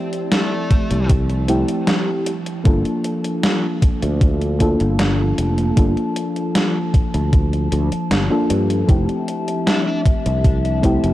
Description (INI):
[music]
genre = vaporwave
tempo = 77 BPM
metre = 4/4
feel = straight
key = unclear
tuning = A4 = 435 Hz
[part]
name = mellow FM electric piano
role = accompaniment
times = 0.0-11.1 s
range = A3 to A4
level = -22 LUFS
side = left 1 dB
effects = wide subtle chorus, vintage 12-bit sampler grit, tape echo
[part]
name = warbly tape-like pad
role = sustained chords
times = 0.0-11.1 s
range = F3 to A5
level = -26 LUFS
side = equal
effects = chorus, built-in reverb, vintage 12-bit sampler grit
[part]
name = gated 80s digital drum machine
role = drums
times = 0.1-11.1 s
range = hi-hat, snare drum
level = -22 LUFS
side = equal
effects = gated reverb, gated reverb snare, overdrive, small room ambience
[part]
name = bluesy overdriven lead guitar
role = melody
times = 0.3-1.1, 9.7-10.0 s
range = A3 to D4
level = -29 LUFS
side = equal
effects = distortion, vintage 12-bit sampler grit, tape echo
[part]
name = electronic kick drum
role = drums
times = 0.7-11.0 s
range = none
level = -15 LUFS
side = equal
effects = overdrive, small room ambience
[part]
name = sustaining fretless electric bass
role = bass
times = 0.9-11.1 s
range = F1 to G2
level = -19 LUFS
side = equal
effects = analog chorus
[sound]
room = light reverb, digital ambience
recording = dark, warm production, cassette tape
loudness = -16 LUFS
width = side -15 dB against mid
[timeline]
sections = 0.0-11.1 A section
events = none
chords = 0.0 Fmaj7; 2.3 Gm9; 8.9 Fmaj7